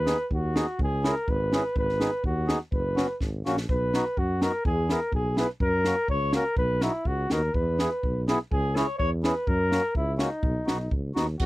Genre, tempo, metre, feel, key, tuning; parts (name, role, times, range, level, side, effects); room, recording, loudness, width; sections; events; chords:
alpine folk, alpine dance band; 124 BPM; 2/4; rubato; B major; A4 = 440 Hz
mellow flugelhorn; melody; 0.0-11.5 s; D#4 to C#5; -28 LUFS; equal
warm tuba; bass; 0.0-11.5 s; F#1 to F#2; -29 LUFS; equal
mellow accordion; accompaniment; 0.1-11.3 s; A#3 to G#4; -28 LUFS; equal
compact cocktail drum kit; drums; 0.1-11.5 s; crash cymbal, kick drum, snare drum; -29 LUFS; equal
little or no reverb; dry, close 1970s-style studio recording; -24 LUFS; side -18 dB against mid
0.0-11.4 A section
drum fill 3.2-3.7
0.0 G#m/D#; 0.8 C#m; 1.8 G#m; 2.7 F#sus4; 3.2 F#; 3.7 B; 4.7 E; 5.6 F#; 6.6 B; 7.5 E; 8.5 C#m; 9.5 F#; 10.4 B